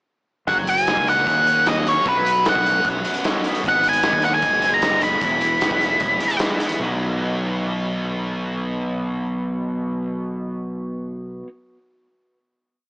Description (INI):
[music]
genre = indie rock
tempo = 152 BPM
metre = 4/4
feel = straight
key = B major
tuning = A4 = 440 Hz
[part]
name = octave-fuzz lead guitar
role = melody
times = 0.5-6.4 s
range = B4 to B5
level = -18 LUFS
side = equal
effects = distortion, tape echo
[part]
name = biting overdriven guitar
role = riff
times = 0.5-11.5 s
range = E3 to G#4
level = -26 LUFS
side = equal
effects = lush chorus
[part]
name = electric guitar through a small old amp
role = riff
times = 0.5-11.5 s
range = E2 to B4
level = -30 LUFS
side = equal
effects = none
[part]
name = growling fingered electric bass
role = bass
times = 0.5-11.4 s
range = E1 to D#2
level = -28 LUFS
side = equal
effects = overdrive
[part]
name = raw garage drum kit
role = drums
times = 0.5-6.8 s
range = hi-hat, kick drum, snare drum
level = -24 LUFS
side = equal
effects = none
[sound]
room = light reverb, small room reverb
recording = blown-out, overdriven recording, overdrive, small speaker sound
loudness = -18 LUFS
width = side -40 dB against mid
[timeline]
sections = 0.5-6.8 pre-chorus; 6.8-10.0 final chord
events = none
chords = 0.5 F#add9; 2.1 Bsus2; 3.7 G#m; 5.2 E; 6.8 B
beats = | 0.48 0.88 1.27 1.67 | 2.07 2.46 2.86 3.25 | 3.65 4.05 4.44 4.84 | 5.23 5.63 6.02 6.42 | 6.81 7.21 7.60 7.99 | 8.39 8.78 9.18 9.57